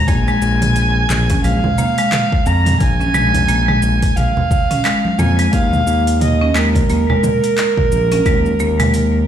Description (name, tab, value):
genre	organic downtempo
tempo	88 BPM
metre	4/4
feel	swing 59% on 16ths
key	Bb minor pentatonic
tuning	A4 = 440 Hz
part	rich kamancheh	melody	0.0-9.3 s	Bb4 to Bb5	-18 LUFS	right 3 dB	ping-pong delay
part	smooth gliding synth bass	bass	0.0-9.2 s	Bb1 to F2	-16 LUFS	equal	none
part	marimba with hard mallets	arpeggios	0.1-8.9 s	Ab3 to Db4	-20 LUFS	left 2 dB	ping-pong delay
part	deep house drum kit	drums	0.1-9.1 s	handclaps, hi-hat, shaker, toms	-22 LUFS	right 1 dB	overdrive, small room ambience
part	electronic kick drum	drums	0.1-8.4 s	none	-17 LUFS	left 1 dB	overdrive, small room ambience
part	congas	percussion	0.3-8.9 s	none	-24 LUFS	right 2 dB	none
room	light reverb, studio reverb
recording	played on a big sound system in a bare room, large studio reverb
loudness	-12 LUFS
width	side -9 dB against mid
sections	0.0-9.3 A section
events	none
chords	0.1 Bb7(no3); 5.5 Eb5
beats	| 0.08 0.76 1.44 2.12 | 2.80 3.48 4.17 4.85 | 5.53 6.21 6.89 7.58 | 8.26 8.94